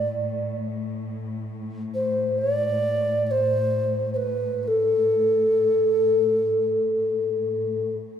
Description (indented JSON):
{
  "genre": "caucasian folk, Caucasian lament",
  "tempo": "free time",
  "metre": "none",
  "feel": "none",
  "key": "A minor",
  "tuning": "A4 = 441 Hz",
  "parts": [
    { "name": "mellow hollow alto ocarina", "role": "melody", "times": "0.0-7.9 s", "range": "A4 to D5", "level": "-21 LUFS", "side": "equal", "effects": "none" },
    { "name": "dark symphonic cello section", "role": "drone", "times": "0.0-8.2 s", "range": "A2", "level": "-31 LUFS", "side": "left 1 dB", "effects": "none" }
  ],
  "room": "wet church reverb, RT60 2.7 s",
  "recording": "minimal, uncompressed stereo recording",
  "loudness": "-21 LUFS",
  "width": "side -8 dB against mid",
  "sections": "0.0-8.2 A section",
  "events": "none",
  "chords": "none",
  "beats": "free time"
}